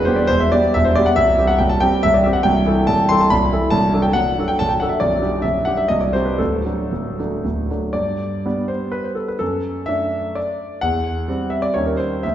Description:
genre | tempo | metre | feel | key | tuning
classical, romantic triple-time dance for piano with dotted rhythms | 110-152 BPM | 3/4 | rubato | G major | A4 = 440 Hz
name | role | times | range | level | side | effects
warm concert grand piano | solo | 0.0-12.3 s | B0 to C6 | -16 LUFS | equal | none
room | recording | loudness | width
wet recital hall reverb, RT60 1.7 s | recorded in a church or concert hall, nothing above 7.7 kHz | -16 LUFS | side -11 dB against mid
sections
0.0-7.9 A section; 7.9-12.3 B section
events
none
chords
0.0 Em; 1.2 C5; 2.5 Am7/C; 3.7 D7/C; 5.0 G/B; 5.9 C5; 6.4 D; 7.9 G; 9.4 D/F#; 10.8 C/E; 11.7 Eb7

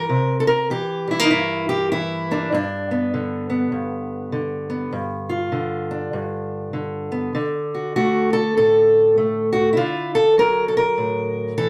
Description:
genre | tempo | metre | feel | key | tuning
acoustic country blues, solo or duo | 99 BPM | 4/4 | swing 62% on 8ths | unclear | A4 = 442 Hz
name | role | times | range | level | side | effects
fingerpicked steel-string acoustic guitar | solo | 0.0-11.7 s | G2 to Bb4 | -21 LUFS | equal | slapback echo
room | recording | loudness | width
wet small room reverb, RT60 0.5 s | none | -21 LUFS | mono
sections
0.0-11.7 A section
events
none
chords
0.0 C7; 2.5 G7; 7.4 D

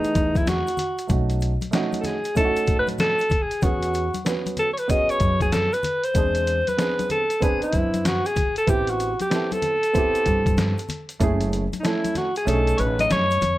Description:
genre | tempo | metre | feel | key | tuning
hip hop, jazz-hop | 95 BPM | 4/4 | swing 65% on 16ths | E major | A4 = 440 Hz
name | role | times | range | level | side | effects
breathy alto saxophone | melody | 0.0-13.6 s | D#4 to D#5 | -22 LUFS | equal | none
dark baby grand piano | accompaniment | 0.0-13.3 s | E3 to B4 | -28 LUFS | right 4 dB | none
trip hop sampler-style drum kit | drums | 0.0-13.6 s | hi-hat, kick drum, snare drum | -25 LUFS | equal | none
egg shaker and congas | percussion | 0.0-13.6 s | none | -34 LUFS | left 5 dB | none
upright bass | bass | 0.2-13.6 s | F#1 to A2 | -25 LUFS | equal | none
room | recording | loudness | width
light reverb, studio reverb | dark, warm production | -20 LUFS | side -16 dB against mid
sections
0.0-13.6 A section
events
alto saxophone solo 0.0-13.6; kick muted 12.5-13.6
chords
0.0 F#m11; 1.1 B7; 3.6 E69; 6.2 E7b13; 8.7 Am7; 11.2 F#m7; 12.5 B13

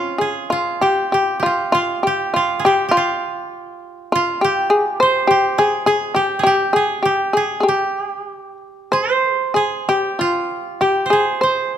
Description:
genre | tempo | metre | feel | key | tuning
japanese traditional, Japanese chamber music | 47-52 BPM | 2/4 | rubato | unclear | A4 = 440 Hz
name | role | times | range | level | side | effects
shamisen | melody | 0.0-11.8 s | F4 to C5 | -17 LUFS | left 2 dB | none
koto | second line | 0.0-11.8 s | Db4 to C5 | -20 LUFS | right 4 dB | none
room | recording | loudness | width
light reverb | close, detailed microphones | -15 LUFS | side -10 dB against mid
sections
0.0-11.8 A section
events
none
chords
none

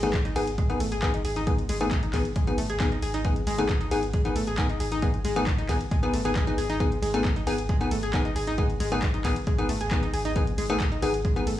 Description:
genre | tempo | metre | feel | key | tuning
driving peak-time techno | 135 BPM | 4/4 | straight | G# phrygian | A4 = 440 Hz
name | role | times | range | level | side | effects
analog pluck | riff | 0.0-11.6 s | G#3 to G#4 | -30 LUFS | equal | chorus, sidechain pumping, analog delay
wavetable chord stab | stabs | 0.0-11.5 s | D#3 to G#4 | -29 LUFS | left 2 dB | sidechain pumping, analog delay
saturated sub bass | bass | 0.0-11.6 s | G#1 | -32 LUFS | equal | tube saturation, sidechain pumping, low-pass filter
punchy analog drum machine | drums | 0.0-11.6 s | handclaps, hi-hat, ride cymbal | -36 LUFS | equal | none
electronic kick drum | drums | 0.1-11.3 s | none | -26 LUFS | equal | none
room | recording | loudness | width
light reverb, digital ambience | dry, gritty hardware recording, transformer saturation, cassette tape, studio reverb | -23 LUFS | side -13 dB against mid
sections
0.0-11.6 A section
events
none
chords
0.0 G#m

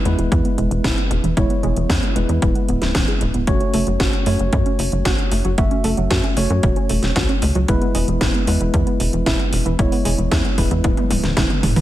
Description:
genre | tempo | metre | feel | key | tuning
italo disco | 114 BPM | 4/4 | straight | unclear | A4 = 440 Hz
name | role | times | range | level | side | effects
mellow tine electric piano | stabs | 0.0-11.8 s | G#3 to E5 | -23 LUFS | equal | medium stereo tremolo, ping-pong delay
warbly dusty pluck | arpeggios | 0.1-11.8 s | E3 to G#4 | -25 LUFS | right 3 dB | chorus, ping-pong delay
tight sequencer bass | bass | 0.1-11.8 s | D1 to F#2 | -21 LUFS | equal | none
house drum kit | drums | 0.1-11.8 s | hi-hat, snare drum, toms | -23 LUFS | equal | overdrive, gated reverb
electronic kick drum | drums | 0.3-11.5 s | none | -21 LUFS | equal | overdrive
room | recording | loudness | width
digital ambience | none | -16 LUFS | side -14 dB against mid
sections
0.0-11.8 A section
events
drum fill 10.8-11.8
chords
0.0 E; 3.5 F#m; 7.7 E

